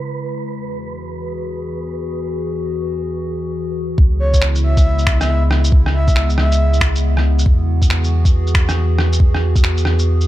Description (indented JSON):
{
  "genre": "future garage",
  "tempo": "138 BPM",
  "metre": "4/4",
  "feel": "swing 64% on 16ths",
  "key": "unclear",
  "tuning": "A4 = 440 Hz",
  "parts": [
    { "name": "warbly tape-like pad", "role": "sustained chords", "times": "0.0-10.3 s", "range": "E2 to B4", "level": "-23 LUFS", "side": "left 1 dB", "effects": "chorus, built-in reverb, sidechain pumping" },
    { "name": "wind-like tuned noise texture", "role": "texture", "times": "0.0-4.0 s", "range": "B4", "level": "-31 LUFS", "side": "right 8 dB", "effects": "built-in reverb" },
    { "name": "warm sub bass", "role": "bass", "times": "4.0-10.3 s", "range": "C#2 to E2", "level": "-15 LUFS", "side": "equal", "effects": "sidechain pumping" },
    { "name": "electronic kick drum", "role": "drums", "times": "4.0-9.6 s", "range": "none", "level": "-14 LUFS", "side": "equal", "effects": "none" },
    { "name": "breathy flute-like synth lead", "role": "melody", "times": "4.2-6.8 s", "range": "C#5 to E5", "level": "-23 LUFS", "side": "equal", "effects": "chorus, analog delay" },
    { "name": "electronic shaker, finger snaps and rim click", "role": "drums", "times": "4.3-10.3 s", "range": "none", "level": "-22 LUFS", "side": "equal", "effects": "none" }
  ],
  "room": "little or no reverb",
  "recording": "none",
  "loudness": "-14 LUFS",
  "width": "side -14 dB against mid",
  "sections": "0.0-4.0 A section; 4.0-10.3 B section",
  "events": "filter sweep on ambient pad 0.0-4.0",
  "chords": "0.0 C#m7; 0.5 Eadd9; 4.0 C#m7; 7.5 Eadd9"
}